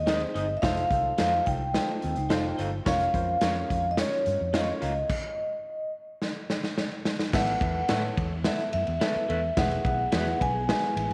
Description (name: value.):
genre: uptempo 1960s-style soul.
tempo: 107 BPM.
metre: 4/4.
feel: straight.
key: unclear.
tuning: A4 = 440 Hz.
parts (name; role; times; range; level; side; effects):
vibraphone with medium mallets; melody; 0.0-11.1 s; Db5 to G#5; -31 LUFS; equal; tape echo.
vintage muted fingered electric bass; bass; 0.0-11.1 s; E1 to A2; -34 LUFS; equal; none.
warm grand piano; accompaniment; 0.1-11.1 s; B3 to F#5; -37 LUFS; equal; none.
electric guitar through a small old amp; stabs; 0.1-10.3 s; Eb4 to F5; -39 LUFS; equal; none.
raw garage drum kit; drums; 0.1-11.1 s; crash cymbal, hi-hat, kick drum, ride cymbal, snare drum; -32 LUFS; equal; none.
mellow electric guitar; riff; 1.9-2.8, 10.1-11.1 s; G#3 to D5; -39 LUFS; equal; phaser.
room: light reverb.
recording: none.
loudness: -27 LUFS.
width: mono.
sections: 0.0-7.3 A section; 7.3-11.1 A section.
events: stop 5.1-7.3; drum fill 6.2-7.3.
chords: 0.0 Ab; 0.6 F7; 2.9 Bbm/F; 5.1 N.C.; 7.3 Asus2; 9.6 E.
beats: 0.07 | 0.63 1.19 1.75 2.30 | 2.86 3.42 3.98 4.54 | 5.09 5.65 6.21 6.77 | 7.33 7.89 8.45 9.01 | 9.56 10.12 10.68.